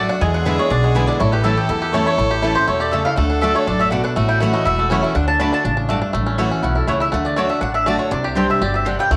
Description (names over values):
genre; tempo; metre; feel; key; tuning
bluegrass; 243 BPM; 4/4; straight; D major; A4 = 440 Hz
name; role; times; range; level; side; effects
mandolin; melody; 0.0-9.2 s; F#4 to B5; -23 LUFS; equal; none
clear fiddle; second line; 0.0-6.0 s; D4 to A4; -28 LUFS; equal; none
picked steel-string acoustic guitar; accompaniment; 0.0-9.2 s; E2 to G4; -24 LUFS; equal; none
bluegrass banjo; arpeggios; 0.0-9.2 s; G3 to G4; -26 LUFS; equal; none
mandolin; stabs; 0.0-9.0 s; A3 to A5; -32 LUFS; equal; none
upright bass; bass; 0.0-9.2 s; E1 to E2; -24 LUFS; equal; none
room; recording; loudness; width
moderate plate reverb, RT60 2.5 s; none; -18 LUFS; mono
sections
0.0-6.1 A section; 6.1-9.2 B section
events
mandolin solo 6.1-9.2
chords
0.2 E7; 1.2 A; 3.2 D; 4.2 A6; 5.2 D; 6.1 A6; 7.1 D; 8.1 Csus2